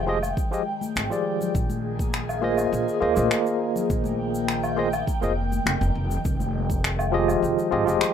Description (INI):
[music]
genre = sunset chillout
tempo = 102 BPM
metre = 4/4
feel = straight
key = unclear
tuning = A4 = 441 Hz
[part]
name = barky tine electric piano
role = accompaniment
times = 0.0-8.1 s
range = F3 to Eb5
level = -24 LUFS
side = moving between left 5 dB and right 1 dB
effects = medium stereo tremolo, auto-pan, ping-pong delay
[part]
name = airy breathy pad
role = sustained chords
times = 0.0-8.1 s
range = Eb3 to G5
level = -30 LUFS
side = right 1 dB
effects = chorus, phaser
[part]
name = upright bass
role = bass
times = 0.0-8.0 s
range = F1 to Eb2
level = -28 LUFS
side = equal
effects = none
[part]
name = congas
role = percussion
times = 0.1-8.0 s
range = none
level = -36 LUFS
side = left 4 dB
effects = none
[part]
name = woodblock, shaker and finger snaps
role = drums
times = 0.2-8.1 s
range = none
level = -28 LUFS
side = left 2 dB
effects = none
[part]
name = electronic kick drum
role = drums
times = 0.4-6.8 s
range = none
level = -26 LUFS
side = equal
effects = none
[sound]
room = moderate small room reverb, RT60 0.5 s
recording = rough home demo mix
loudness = -22 LUFS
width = side -8 dB against mid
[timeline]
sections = 0.0-8.1 A section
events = none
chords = 0.0 Fm9; 1.5 Bb7sus4; 6.3 Fm9